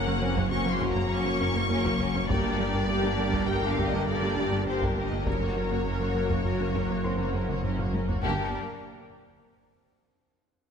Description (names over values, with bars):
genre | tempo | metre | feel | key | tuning
cinematic, hybrid orchestral and electronic film score | 101 BPM | 5/4 | straight | unclear | A4 = 436 Hz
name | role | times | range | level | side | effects
warm symphonic violin section | melody | 0.0-8.6 s | G4 to C#6 | -34 LUFS | left 3 dB | none
warm symphonic violin section | second line | 0.0-8.6 s | A#3 to C#5 | -35 LUFS | left 3 dB | none
rich symphonic viola section | accompaniment | 0.0-8.6 s | F#3 to C#4 | -36 LUFS | right 1 dB | none
analog string pad | sustained chords | 0.0-8.6 s | C#3 to D5 | -35 LUFS | equal | ensemble chorus
dark French horn section | sustained chords | 0.0-8.5 s | Bb3 to A#4 | -35 LUFS | left 5 dB | none
rich studio cello section | bass | 0.0-8.6 s | F#2 to G2 | -35 LUFS | right 2 dB | none
swelling detuned saw bass | bass | 0.0-8.6 s | F#1 to G1 | -36 LUFS | equal | none
warm symphonic double bass section | bass | 0.0-8.6 s | F#1 to G1 | -35 LUFS | right 3 dB | none
felt-muted upright piano | texture | 0.0-8.3 s | A#3 to C6 | -40 LUFS | equal | none
harp-like synth pluck | arpeggios | 0.1-8.2 s | F#3 to G4 | -36 LUFS | left 1 dB | none
rubbery square bass | riff | 0.1-8.2 s | F#2 to G3 | -34 LUFS | right 2 dB | none
taiko ensemble | drums | 0.4-8.4 s | none | -35 LUFS | equal | none
room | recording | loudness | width
moderate scoring stage reverb, RT60 2.0 s | none | -25 LUFS | side -7 dB against mid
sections
0.0-8.2 A section; 8.2-10.7 B section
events
drum fill 7.5-8.2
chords
0.0 F#; 2.3 Gm; 5.3 F#; 8.2 Gm